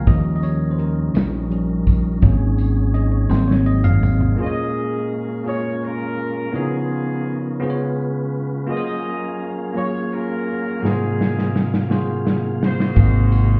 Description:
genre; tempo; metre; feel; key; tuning
slow gospel; 56 BPM (dotted quarters); 6/8; straight; unclear; A4 = 440 Hz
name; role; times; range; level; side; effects
bell-like tine electric piano; accompaniment; 0.0-13.6 s; Ab2 to F5; -25 LUFS; equal; none
tonewheel organ; sustained chords; 0.0-13.6 s; C3 to F5; -30 LUFS; equal; chorus vibrato, stopped rotary speaker
fingered electric bass; bass; 0.0-4.3, 13.0-13.6 s; Ab1 to Eb2; -20 LUFS; equal; none
warm soul drum kit; drums; 0.1-4.4, 10.9-13.5 s; hi-hat, kick drum, ride cymbal, snare drum, toms; -20 LUFS; equal; none
tambourine; percussion; 0.1-4.4, 13.0-13.6 s; none; -58 LUFS; equal; none
warm horn section; melody; 4.4-13.6 s; Cb4 to Eb5; -30 LUFS; equal; none
room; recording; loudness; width
little or no reverb; heard muffled through a wall, stone room reverb, EQ; -20 LUFS; mono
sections
0.0-4.4 A section; 4.4-13.6 B section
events
tine electric piano solo 0.0-4.4; drum fill 3.3-4.4, 10.8-13.0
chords
0.1 Eb7; 2.2 Ab7sus4; 3.3 Ab7; 4.4 Bbm7; 6.5 Db13; 7.6 Db7; 8.7 Gbmaj9#11; 10.8 Ab13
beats
| 0.07 1.15 | 2.23 3.31 | 4.39 5.46 | 6.54 7.61 | 8.69 9.76 | 10.83 11.90 | 12.97

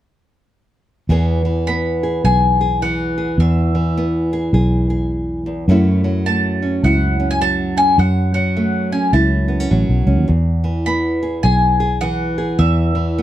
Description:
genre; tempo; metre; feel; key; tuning
acoustic folk duo or small band; 104 BPM; 4/4; swing 62% on 8ths; E major; A4 = 441 Hz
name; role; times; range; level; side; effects
nylon-string guitar; accompaniment; 1.1-13.2 s; E2 to G#4; -20 LUFS; right 1 dB; none
fingered electric bass; bass; 1.1-13.2 s; A1 to F#2; -17 LUFS; equal; none
bowl-back mandolin; melody; 1.7-13.2 s; E5 to B5; -20 LUFS; left 2 dB; none
room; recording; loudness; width
light reverb; dark, warm production; -14 LUFS; side -12 dB against mid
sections
1.1-13.2 A section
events
none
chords
1.1 E; 5.7 F#m7; 10.3 Eadd9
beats
| 1.09 1.67 2.24 2.82 | 3.39 3.96 4.54 5.11 | 5.69 6.26 6.83 7.41 | 7.98 8.55 9.13 9.71 | 10.28 10.86 11.43 12.01 | 12.59 13.17

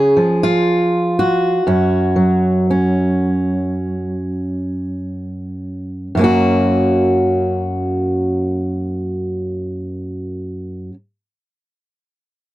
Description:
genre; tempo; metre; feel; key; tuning
folk, solo fingerstyle acoustic guitar; 49-63 BPM; 4/4; rubato; F# major; A4 = 440 Hz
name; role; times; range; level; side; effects
fingerpicked steel-string acoustic guitar; solo; 0.0-11.0 s; F#2 to G#4; -15 LUFS; equal; none
room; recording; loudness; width
light reverb; dry, close 1970s-style studio recording; -15 LUFS; side -16 dB against mid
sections
0.0-6.1 A section; 6.1-11.0 B section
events
slowing down 0.0-6.1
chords
0.0 C#; 1.7 F#5; 6.1 F#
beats
0.67 | 1.66 2.69 3.78 4.94 | 6.15 7.35 8.55 9.75

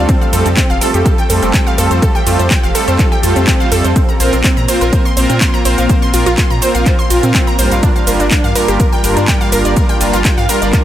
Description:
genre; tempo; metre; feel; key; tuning
progressive house; 124 BPM; 4/4; straight; unclear; A4 = 444 Hz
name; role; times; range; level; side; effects
lush unison pad; sustained chords; 0.0-10.8 s; F3 to Bb4; -21 LUFS; equal; chorus, sidechain pumping
soft supersaw; stabs; 0.0-10.8 s; G2 to C5; -18 LUFS; right 1 dB; phaser, cassette tape, sidechain pumping, dub echo
round analog bass; bass; 0.0-10.7 s; F1 to Bb2; -16 LUFS; equal; tube saturation, sidechain pumping
wide unison pluck; arpeggios; 0.1-10.8 s; C4 to C6; -17 LUFS; right 1 dB; sidechain pumping, dub echo
electronic kick drum; drums; 0.1-10.8 s; none; -14 LUFS; equal; overdrive
house drum kit; drums; 0.1-10.8 s; cabasa, handclaps, hi-hat, ride cymbal; -19 LUFS; equal; overdrive
room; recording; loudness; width
little or no reverb; none; -10 LUFS; side -12 dB against mid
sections
0.0-10.8 A section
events
none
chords
0.1 Fadd9; 4.0 Bbsus2; 7.8 Gm7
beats
| 0.09 0.57 1.05 1.54 | 2.02 2.51 2.99 3.47 | 3.96 4.44 4.93 5.41 | 5.89 6.38 6.86 7.34 | 7.83 8.31 8.80 9.28 | 9.77 10.25 10.73

